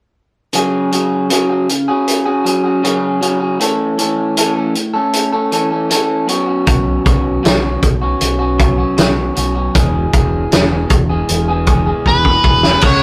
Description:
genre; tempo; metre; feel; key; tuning
quiet-loud alternative rock; 78 BPM; 4/4; straight; unclear; A4 = 440 Hz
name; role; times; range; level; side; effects
electric guitar through a small old amp; arpeggios; 0.5-13.0 s; E2 to A4; -18 LUFS; equal; none
loose indie drum kit; drums; 0.5-13.0 s; crash cymbal, hi-hat, kick drum, snare drum; -17 LUFS; equal; none
growling fingered electric bass; bass; 6.7-13.0 s; E1 to Db2; -21 LUFS; equal; overdrive
octave-fuzz lead guitar; melody; 12.1-13.0 s; B4 to Db5; -14 LUFS; equal; distortion
room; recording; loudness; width
light reverb; rough rehearsal-room recording; -14 LUFS; mono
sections
0.5-12.8 A section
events
drum fill 12.1-12.8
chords
0.5 Dbsus4; 3.6 A; 6.3 Cbsus2; 9.8 E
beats
| 0.54 1.30 2.07 2.84 | 3.61 4.38 5.14 5.91 | 6.68 7.45 8.22 8.99 | 9.76 10.52 11.29 12.06 | 12.83

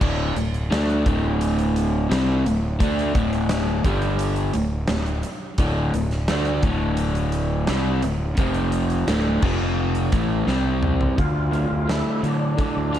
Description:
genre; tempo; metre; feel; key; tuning
classic rock; 86 BPM; 4/4; straight; D minor; A4 = 440 Hz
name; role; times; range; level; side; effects
crunchy overdriven guitar; riff; 0.0-13.0 s; D2 to F4; -23 LUFS; equal; none
fuzz fingered electric bass; bass; 0.0-13.0 s; D1 to D3; -24 LUFS; equal; overdrive
huge arena drum kit; drums; 0.0-13.0 s; crash cymbal, hi-hat, kick drum, snare drum, toms; -26 LUFS; equal; vintage 12-bit sampler grit
overdriven tonewheel organ; melody; 11.2-13.0 s; D4 to F4; -28 LUFS; right 1 dB; fast rotary speaker
room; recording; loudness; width
light reverb, studio ambience; vinyl crackle; -19 LUFS; side -11 dB against mid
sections
0.0-11.2 A section; 11.2-13.0 B section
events
drum fill 10.5-11.2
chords
0.0 D5; 3.9 G5; 4.5 D5; 8.4 F5; 9.1 D5; 9.4 F5; 10.1 A5; 10.5 C5; 11.2 Dm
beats
| 0.01 0.71 1.41 2.11 | 2.80 3.50 4.20 4.90 | 5.59 6.29 6.99 7.69 | 8.38 9.08 9.78 10.48 | 11.18 11.88 12.58

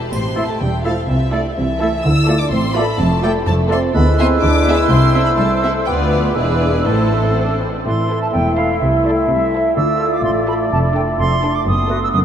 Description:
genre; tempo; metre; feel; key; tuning
cinematic, playful, whimsical film cue; 125 BPM; 2/4; straight; A minor; A4 = 440 Hz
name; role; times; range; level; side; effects
bright chamber violin section; second line; 0.0-12.1 s; G#4 to A5; -26 LUFS; left 2 dB; none
rich chamber violin section; melody; 0.1-12.1 s; A4 to E6; -26 LUFS; left 2 dB; none
mellow French horn section; sustained chords; 0.1-12.2 s; D3 to F4; -22 LUFS; right 1 dB; none
rich chamber double bass section; bass; 0.1-12.2 s; E1 to D2; -20 LUFS; equal; none
warm chamber cello section; bass; 0.1-12.2 s; C2 to D3; -22 LUFS; equal; none
triangle; percussion; 0.1-1.1 s; none; -43 LUFS; right 7 dB; none
clear clarinet; second line; 0.4-12.0 s; C4 to F#4; -25 LUFS; left 5 dB; none
silver concert flute; second line; 0.4-12.2 s; D5 to E6; -23 LUFS; right 3 dB; none
warm oboe; second line; 0.4-12.0 s; A4 to E5; -27 LUFS; left 2 dB; none
mellow bassoon; accompaniment; 0.4-12.0 s; G#3 to B3; -23 LUFS; right 4 dB; none
warm studio viola section; accompaniment; 0.4-12.1 s; A3 to G#4; -26 LUFS; right 2 dB; none
room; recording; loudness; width
wet huge ambient reverb, RT60 8.3 s; in a vast, echoing space; -14 LUFS; side -9 dB against mid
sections
0.1-7.8 A section; 7.8-12.2 A section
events
none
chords
0.1 A5; 1.1 Am/C; 2.0 Dm; 3.0 Dm/F; 3.9 E7/D; 4.9 Am/C; 5.9 Bdim/D; 6.4 E7; 6.9 Am; 8.8 Am/C; 9.8 Dm; 10.7 Dm/F; 11.7 B5/F#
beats
| 0.12 0.60 | 1.08 1.56 | 2.04 2.52 | 2.99 3.47 | 3.94 4.42 | 4.90 5.38 | 5.87 6.36 | 6.86 7.35 | 7.85 8.33 | 8.81 9.29 | 9.77 10.24 | 10.71 11.18 | 11.66 12.13

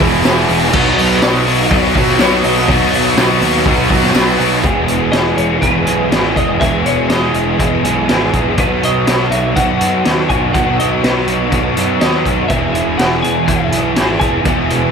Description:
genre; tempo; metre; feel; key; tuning
rock, shoegaze and dream pop; 122 BPM; 4/4; straight; E major; A4 = 444 Hz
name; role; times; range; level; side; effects
crunchy overdriven guitar; riff; 0.0-14.9 s; E2 to G#4; -18 LUFS; left 13 dB; analog chorus
overdriven semi-hollow guitar; riff; 0.0-14.9 s; E2 to G#4; -17 LUFS; right 10 dB; reverse reverb
tight distorted guitar; riff; 0.0-4.6 s; E2 to B3; -18 LUFS; equal; distortion
fuzz picked electric bass; bass; 0.0-14.9 s; E1 to F#2; -20 LUFS; equal; overdrive
raw garage drum kit; drums; 0.0-14.8 s; crash cymbal, hi-hat, kick drum, snare drum; -17 LUFS; equal; none
tambourine; percussion; 0.3-4.3 s; none; -30 LUFS; right 16 dB; none
twelve-string electric guitar; melody; 1.2-14.9 s; B4 to G#5; -20 LUFS; left 1 dB; slapback echo
room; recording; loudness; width
moderate concert hall reverb, RT60 1.9 s, small room ambience; none; -11 LUFS; side -6 dB against mid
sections
0.0-4.6 A section; 4.6-14.9 B section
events
none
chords
0.0 E; 0.7 B; 4.6 Emaj7; 8.6 B; 12.5 E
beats
0.25 | 0.74 1.22 1.71 2.20 | 2.69 3.17 3.66 4.15 | 4.64 5.13 5.62 6.11 | 6.61 7.10 7.59 8.08 | 8.57 9.06 9.55 10.04 | 10.54 11.03 11.52 12.01 | 12.50 12.99 13.48 13.97 | 14.46

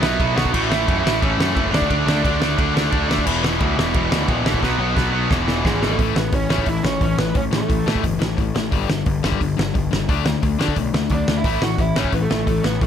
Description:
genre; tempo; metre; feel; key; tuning
punk rock; 176 BPM; 4/4; straight; A mixolydian from 6.0 s; A4 = 439 Hz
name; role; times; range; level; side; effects
lead guitar through a small cranked amp; melody; 0.0-2.4, 5.7-8.0, 11.1-12.9 s; G#3 to F#5; -25 LUFS; right 5 dB; overdrive, ping-pong delay
crunchy overdriven guitar; riff; 0.0-6.0 s; E2 to D4; -23 LUFS; right 12 dB; none
distorted electric guitar; riff; 0.0-12.9 s; E2 to D4; -23 LUFS; left 12 dB; overdrive
fuzz picked electric bass; bass; 0.0-12.9 s; E1 to D3; -24 LUFS; equal; overdrive
loose indie drum kit; drums; 0.0-12.9 s; crash cymbal, hi-hat, kick drum, ride cymbal, snare drum; -21 LUFS; equal; none
room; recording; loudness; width
little or no reverb; none; -17 LUFS; side -8 dB against mid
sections
0.0-6.0 A section; 6.0-12.9 B section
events
drum fill 4.6-6.0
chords
0.0 B5; 0.5 A; 1.7 D5; 3.3 E5; 4.6 B5; 5.3 E; 6.0 A; 8.7 G5; 10.1 D5; 11.4 A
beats
0.19 | 0.53 0.87 1.21 1.55 | 1.89 2.23 2.58 2.92 | 3.26 3.60 3.94 4.28 | 4.62 4.97 5.31 5.65 | 5.99 6.33 6.67 7.01 | 7.36 7.70 8.04 8.38 | 8.72 9.06 9.40 9.74 | 10.09 10.43 10.77 11.11 | 11.45 11.79 12.13 12.47 | 12.81

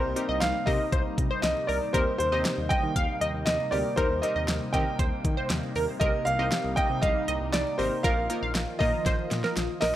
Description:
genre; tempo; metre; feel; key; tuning
synth-pop; 118 BPM; 4/4; straight; Eb major; A4 = 440 Hz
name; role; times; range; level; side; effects
clear concert grand piano; melody; 0.0-10.0 s; C5 to G5; -29 LUFS; equal; tape echo
analog pluck; accompaniment; 0.0-9.7 s; Bb3 to C5; -35 LUFS; left 1 dB; chorus
phased analog pad; sustained chords; 0.0-10.0 s; C3 to F4; -35 LUFS; left 1 dB; phaser, chorus
smooth synth bass; bass; 0.0-9.9 s; Ab1 to Eb3; -33 LUFS; equal; none
pop drum kit; drums; 0.2-9.9 s; hi-hat, kick drum, snare drum; -29 LUFS; equal; none
funky polysynth comp; second line; 0.3-9.9 s; Bb4 to F5; -33 LUFS; right 1 dB; chorus, tape echo
room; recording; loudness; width
light reverb, digital ambience; dry, gritty hardware recording; -24 LUFS; side -12 dB against mid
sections
0.0-10.0 A section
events
drum fill 9.1-10.0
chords
0.0 Cm7; 1.9 Eb6; 6.0 Cm7; 8.0 Bbsus4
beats
0.41 0.92 1.43 | 1.94 2.45 2.96 3.47 | 3.98 4.48 4.99 5.50 | 6.01 6.52 7.03 7.53 | 8.04 8.55 9.06 9.57

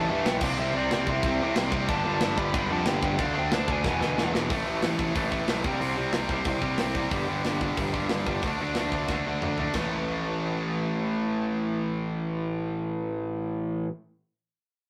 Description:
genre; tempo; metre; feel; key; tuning
punk rock; 183 BPM; 4/4; straight; A minor; A4 = 440 Hz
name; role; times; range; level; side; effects
biting lead guitar; melody; 0.0-4.3 s; D5 to B5; -34 LUFS; equal; overdrive
distorted electric guitar; riff; 0.0-13.9 s; E2 to D4; -30 LUFS; equal; overdrive
fuzz picked electric bass; bass; 0.0-13.8 s; E1 to A2; -34 LUFS; equal; overdrive
tight metal drum kit; drums; 0.3-9.8 s; crash cymbal, hi-hat, kick drum, snare drum, splash cymbal, toms; -33 LUFS; equal; none
room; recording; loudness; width
moderate studio reverb, RT60 0.6 s; rough rehearsal-room recording; -27 LUFS; mono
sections
0.0-4.5 A section; 4.5-9.7 B section; 9.7-12.4 C section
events
drum fill 3.8-4.5, 9.1-9.7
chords
0.4 C; 1.9 G; 3.2 D5; 3.8 E; 4.5 A5; 5.6 C5; 7.1 G5; 8.4 D5; 9.7 A5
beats
0.25 | 0.58 0.91 1.23 1.56 | 1.89 2.21 2.54 2.87 | 3.19 3.52 3.85 4.18 | 4.50 4.83 5.16 5.49 | 5.81 6.14 6.47 6.80 | 7.12 7.45 7.78 8.11 | 8.44 8.76 9.09 9.42 | 9.75 10.08 10.40 10.73 | 11.06 11.39 11.72 12.05

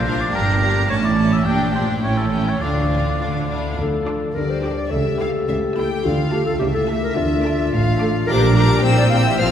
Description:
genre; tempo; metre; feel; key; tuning
quick classical-period movement for symphony orchestra; 107 BPM; 2/4; straight; D minor; A4 = 440 Hz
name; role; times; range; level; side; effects
warm chamber violin section; melody; 0.0-9.5 s; D5 to Bb5; -28 LUFS; left 4 dB; none
rich chamber violin section; second line; 0.0-9.5 s; E4 to F6; -29 LUFS; left 4 dB; none
warm oboe; second line; 0.0-3.5 s; A4 to G5; -24 LUFS; right 1 dB; none
clear symphonic viola section; accompaniment; 0.0-9.5 s; A3 to A4; -26 LUFS; left 1 dB; none
clear studio cello section; bass; 0.0-9.5 s; G2 to D3; -23 LUFS; right 2 dB; none
rich studio double bass section; bass; 0.0-9.5 s; G1 to D2; -22 LUFS; right 1 dB; none
mellow clarinet; second line; 3.8-9.4 s; F4 to F5; -23 LUFS; left 2 dB; none
dark French horn section; sustained chords; 3.8-9.5 s; F3 to A4; -26 LUFS; left 2 dB; none
room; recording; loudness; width
wet church reverb, RT60 3.4 s; recorded in a church or concert hall; -16 LUFS; side -9 dB against mid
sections
0.0-3.8 A section; 3.8-9.5 A section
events
none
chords
0.3 Gm; 0.9 A; 1.5 Gm/Bb; 2.0 A7; 2.6 Dm; 4.4 G5/D; 4.9 A7/C#; 6.0 Dm; 6.6 A/C#; 7.2 Dm; 8.3 Gm/Bb; 8.8 C7/Bb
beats
| 0.35 0.91 | 1.47 2.04 | 2.62 3.21 | 3.79 4.36 | 4.92 5.49 | 6.05 6.61 | 7.17 7.73 | 8.28 8.84 | 9.39

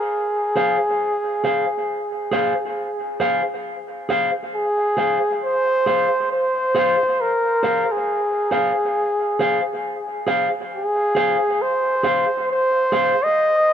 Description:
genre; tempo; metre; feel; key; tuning
reggae; 68 BPM; 4/4; swing 62% on 16ths; F minor; A4 = 439 Hz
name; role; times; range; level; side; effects
breathy flugelhorn; melody; 0.0-13.7 s; Ab4 to Eb5; -19 LUFS; equal; dub echo
mellow electric guitar; accompaniment; 0.6-13.1 s; Ab4 to F5; -23 LUFS; equal; high-pass filter, dub echo
room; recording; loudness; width
moderate plate reverb, RT60 2.8 s; echo-heavy mix; -18 LUFS; side -9 dB against mid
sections
0.0-10.7 A section; 10.7-13.7 B section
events
none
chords
0.0 Fm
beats
| 0.12 1.00 1.88 2.77 | 3.65 4.53 5.42 6.30 | 7.18 8.07 8.95 9.83 | 10.72 11.60 12.48 13.37

